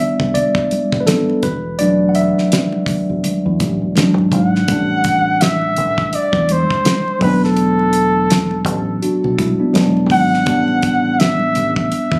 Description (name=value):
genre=R&B, neo-soul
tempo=83 BPM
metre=4/4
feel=swing 58% on 16ths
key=A dorian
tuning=A4 = 440 Hz
part: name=tine electric piano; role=accompaniment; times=0.0-12.2 s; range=F#3 to F#5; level=-19 LUFS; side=equal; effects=overdrive
part: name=deep dub fingered electric bass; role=bass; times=0.0-12.2 s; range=E1 to E2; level=-24 LUFS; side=equal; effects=none
part: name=congas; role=percussion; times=0.0-12.2 s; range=none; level=-28 LUFS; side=equal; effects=none
part: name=damped 70s drum kit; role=drums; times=0.2-12.2 s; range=hi-hat, kick drum, snare drum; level=-21 LUFS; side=equal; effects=none
part: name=clear flugelhorn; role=melody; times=4.3-12.2 s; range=A4 to F#5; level=-20 LUFS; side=equal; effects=plate reverb
room=light reverb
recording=recorded on a phone in the room, club reverb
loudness=-16 LUFS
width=mono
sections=0.0-4.7 A section; 4.7-12.2 B section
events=tine electric piano solo 0.0-4.7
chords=0.0 Am11; 1.4 E9sus4; 4.0 E7; 4.7 Am7; 7.2 E9sus4; 9.7 E7; 10.5 Am11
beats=0.35 1.07 | 1.79 2.52 3.24 3.96 | 4.68 5.41 6.13 6.85 | 7.58 8.30 9.02 9.74 | 10.47 11.19 11.91